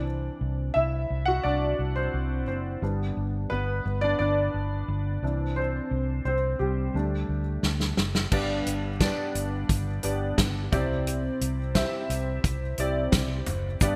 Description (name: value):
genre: piano-driven pop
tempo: 87 BPM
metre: 4/4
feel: straight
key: unclear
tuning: A4 = 440 Hz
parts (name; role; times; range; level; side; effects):
- warm concert grand piano; accompaniment; 0.0-14.0 s; G2 to F#5; -31 LUFS; equal; analog chorus
- vintage muted fingered electric bass; bass; 0.0-14.0 s; F#1 to D2; -31 LUFS; equal; none
- natural country drum kit; drums; 7.6-14.0 s; crash cymbal, hi-hat, kick drum, snare drum, toms; -29 LUFS; equal; gated reverb
- egg shaker; percussion; 13.8-14.0 s; none; -39 LUFS; equal; none
room: light reverb, studio reverb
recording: bright 1980s-style digital production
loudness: -27 LUFS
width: mono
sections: 0.0-8.3 A section; 8.3-14.0 B section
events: grand piano solo 0.0-8.3; drum fill 7.6-8.3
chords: 0.0 Cadd9; 2.8 G; 5.2 Cadd9; 6.9 Dsus4; 8.3 G; 10.7 Cadd9